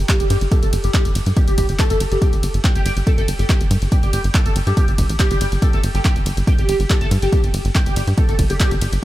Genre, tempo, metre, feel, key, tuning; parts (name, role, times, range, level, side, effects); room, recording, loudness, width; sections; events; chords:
driving peak-time techno; 141 BPM; 4/4; straight; A4 = 440 Hz
tight sequencer bass; bass; 0.0-9.0 s; G1 to G2; -20 LUFS; equal; sidechain pumping
overdriven synth lead; riff; 0.1-8.7 s; G4 to A4; -24 LUFS; equal; phaser, ensemble chorus, sidechain pumping, tape echo
electronic kick drum; drums; 0.1-8.7 s; -17 LUFS; equal
punchy analog drum machine; drums; 0.1-9.0 s; handclaps, hi-hat, ride cymbal; -26 LUFS; equal; overdrive, sidechain pumping on hats, sidechain pumping on cymbals
light reverb; -15 LUFS; side -15 dB against mid
0.0-9.0 A section